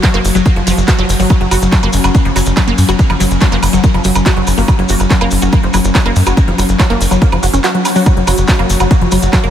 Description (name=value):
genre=psychedelic trance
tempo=142 BPM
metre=4/4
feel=straight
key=unclear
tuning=A4 = 440 Hz
part: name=pulsing gated texture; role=sustained chords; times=0.0-9.5 s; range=F#3 to F#4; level=-18 LUFS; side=left 3 dB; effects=chorus, built-in reverb, sidechain pumping
part: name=wide unison pluck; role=riff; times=0.0-9.5 s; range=E#3 to F#4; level=-16 LUFS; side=equal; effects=auto-pan, sidechain pumping, diffuse ambient delay
part: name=big-room dance drum kit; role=drums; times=0.0-9.5 s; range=handclaps, hi-hat, woodblock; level=-19 LUFS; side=right 2 dB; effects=overdrive
part: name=electronic kick drum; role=drums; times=0.0-9.4 s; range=none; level=-11 LUFS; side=equal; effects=overdrive
part: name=maracas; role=percussion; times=0.0-9.4 s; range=none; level=-24 LUFS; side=left 3 dB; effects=none
part: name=tight sequencer bass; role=bass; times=0.1-9.5 s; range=F#1 to F#2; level=-14 LUFS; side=equal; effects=none
room=light reverb, digital ambience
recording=none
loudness=-9 LUFS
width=side -10 dB against mid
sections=0.0-9.5 A section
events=kick drops out 7.6-8.1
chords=0.0 F#5